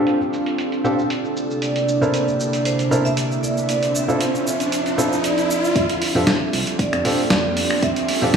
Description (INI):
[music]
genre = deep house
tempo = 116 BPM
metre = 4/4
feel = swing 53% on 16ths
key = F major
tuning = A4 = 439 Hz
[part]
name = airy breathy pad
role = sustained chords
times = 0.0-8.4 s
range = C3 to A4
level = -25 LUFS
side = equal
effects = chorus, sidechain pumping
[part]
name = felt-muted upright piano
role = stabs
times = 0.0-8.4 s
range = C4 to Bb4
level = -24 LUFS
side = equal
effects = sidechain pumping, low-pass filter, dub echo
[part]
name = deep dark ambient pad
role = texture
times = 0.0-8.4 s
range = F3 to F5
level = -27 LUFS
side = right 1 dB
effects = chorus, built-in reverb, sidechain pumping
[part]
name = dusty soul sampler-style drum kit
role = drums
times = 0.1-8.4 s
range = finger snaps, hi-hat, shaker, snare drum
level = -24 LUFS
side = equal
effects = low-pass filter on hats, low-pass filter on snare, low-pass filter on perc, low-pass filter on room
[part]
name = vibraphone with hard mallets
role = melody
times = 1.6-8.4 s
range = C5 to E5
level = -24 LUFS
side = right 3 dB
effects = dub echo
[part]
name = riser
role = sound effects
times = 3.1-8.4 s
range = none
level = -26 LUFS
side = left 1 dB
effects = none
[part]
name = organ-like FM bass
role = bass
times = 5.8-8.3 s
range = C2 to F2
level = -25 LUFS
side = equal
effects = sidechain pumping, high-pass filter
[part]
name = electronic kick drum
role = drums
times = 5.8-8.4 s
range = none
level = -24 LUFS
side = equal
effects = high-pass filter on kick
[sound]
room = wet lush hall reverb, RT60 2.0 s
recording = played on a big sound system in a bare room, large studio reverb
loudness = -18 LUFS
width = side -6 dB against mid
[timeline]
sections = 0.0-5.8 A section; 5.8-8.4 B section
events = riser 3.1-5.8, 5.8-8.4; build-up 5.8-8.4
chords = 0.0 F69; 1.4 C13; 3.7 Dm9; 5.8 F69